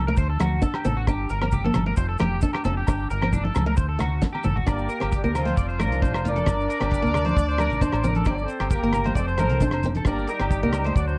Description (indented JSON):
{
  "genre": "highlife guitar band",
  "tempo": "134 BPM",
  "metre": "4/4",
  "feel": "straight",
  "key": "G minor",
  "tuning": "A4 = 440 Hz",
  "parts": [
    { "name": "electric guitar at the edge of break-up", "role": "arpeggios", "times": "0.0-11.2 s", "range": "D4 to D5", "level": "-32 LUFS", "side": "equal", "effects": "analog chorus" },
    { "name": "deep dub fingered electric bass", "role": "bass", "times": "0.0-11.2 s", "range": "F1 to D2", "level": "-28 LUFS", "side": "equal", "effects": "none" },
    { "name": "picked old ladder-braced acoustic guitar", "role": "accompaniment", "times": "0.1-11.1 s", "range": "A3 to D4", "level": "-32 LUFS", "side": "equal", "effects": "none" },
    { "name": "damped 70s drum kit", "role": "drums", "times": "0.2-11.1 s", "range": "hi-hat, kick drum, rim click, snare drum, toms", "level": "-28 LUFS", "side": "equal", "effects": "vintage 12-bit sampler grit" },
    { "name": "maracas", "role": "percussion", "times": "0.2-11.1 s", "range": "none", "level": "-51 LUFS", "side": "equal", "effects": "none" },
    { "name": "agogo bells", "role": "percussion", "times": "0.4-10.9 s", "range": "none", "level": "-37 LUFS", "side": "equal", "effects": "none" },
    { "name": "congas", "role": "percussion", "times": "0.4-10.8 s", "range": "none", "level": "-32 LUFS", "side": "equal", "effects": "none" },
    { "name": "warm horn section", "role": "melody", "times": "4.7-11.2 s", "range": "F3 to D5", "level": "-30 LUFS", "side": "equal", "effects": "none" }
  ],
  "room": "light reverb, studio ambience",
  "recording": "cassette tape",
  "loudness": "-23 LUFS",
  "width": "mono",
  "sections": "0.0-4.7 A section; 4.7-11.2 B section",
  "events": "drum fill 4.2-4.7",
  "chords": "0.2 D; 1.1 Gm; 2.0 F; 2.9 Gm; 3.8 D; 4.7 Gm; 5.6 F; 6.5 Gm; 7.4 D5; 8.3 Gm; 9.2 F; 10.1 Gm"
}